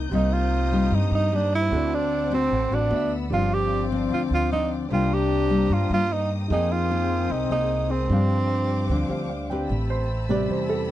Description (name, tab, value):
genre	bossa nova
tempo	150 BPM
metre	4/4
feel	straight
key	C minor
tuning	A4 = 439 Hz
part	bright reedy wooden-headed alto flute	second line	0.0-9.5 s	G3 to D4	-30 LUFS	left 11 dB	none
part	nylon-string guitar	accompaniment	0.0-10.9 s	G2 to B4	-27 LUFS	left 2 dB	none
part	warm baby grand piano	accompaniment	0.0-10.9 s	C3 to Ab5	-32 LUFS	right 2 dB	none
part	warm symphonic string section	sustained chords	0.0-10.9 s	Ab4 to G6	-38 LUFS	left 4 dB	none
part	upright bass	bass	0.0-10.9 s	G1 to G2	-26 LUFS	right 1 dB	none
part	breathy tenor saxophone	melody	0.1-9.3 s	C4 to G4	-25 LUFS	right 3 dB	none
room	little or no reverb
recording	dry, close 1970s-style studio recording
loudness	-21 LUFS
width	side -13 dB against mid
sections	0.0-9.7 A section; 9.7-10.9 B section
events	grand piano fill 9.1-9.7; grand piano solo 9.7-10.9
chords	0.1 Cm7; 1.7 D7; 2.9 D69; 3.3 G7sus4; 4.9 Cm7; 6.5 Fm11; 8.1 G7sus4; 9.7 Am9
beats	| 0.12 0.52 0.92 1.31 | 1.71 2.11 2.51 2.91 | 3.31 3.71 4.11 4.51 | 4.91 5.30 5.70 6.10 | 6.50 6.90 7.30 7.70 | 8.10 8.50 8.90 9.30 | 9.70 10.10 10.49 10.89